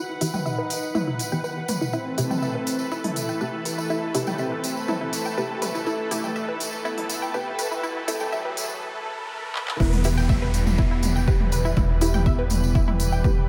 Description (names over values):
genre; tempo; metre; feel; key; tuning
melodic techno; 122 BPM; 4/4; straight; E minor; A4 = 440 Hz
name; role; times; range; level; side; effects
lush unison pad; sustained chords; 0.0-13.5 s; E3 to F#5; -33 LUFS; equal; chorus, sidechain pumping
unison pluck; arpeggios; 0.0-13.3 s; E4 to G5; -32 LUFS; equal; sidechain pumping, tape echo
filtered dub chord stab; stabs; 0.0-13.5 s; C3 to A4; -35 LUFS; equal; lush chorus, cassette tape, sidechain pumping, tape echo
techno drum kit; drums; 0.2-13.3 s; handclaps, hi-hat, toms; -32 LUFS; equal; sidechain pumping on hats, sidechain pumping on toms
tambourine; percussion; 0.2-13.3 s; none; -39 LUFS; equal; none
unison lead; melody; 0.5-12.9 s; F#3 to E4; -35 LUFS; equal; subtle chorus, delay
riser and downlifter; sound effects; 6.1-13.5 s; none; -41 LUFS; equal; none
tight sequencer bass; bass; 9.8-13.5 s; E1; -26 LUFS; equal; sidechain pumping
electronic kick drum; drums; 9.8-13.3 s; none; -24 LUFS; equal; overdrive
room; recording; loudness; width
moderate lush hall reverb, RT60 2.6 s; dreamy mix soaked in reverb, high-pass filter; -25 LUFS; mono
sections
0.0-9.8 A section; 9.8-13.5 B section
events
build-up 0.0-9.8; filter sweep on synth arpeggio sound 0.0-9.8; filter sweep on synth stab 0.0-9.8; break 8.8-9.8; drum fill 9.6; drop 9.8-13.5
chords
0.0 Em; 1.9 Am7; 9.8 Em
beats
0.46 0.95 1.44 | 1.93 2.42 2.92 3.41 | 3.90 4.39 4.88 5.38 | 5.87 6.36 6.85 7.34 | 7.83 8.33 8.82 9.31 | 9.80 10.29 10.79 11.28 | 11.77 12.26 12.75 13.24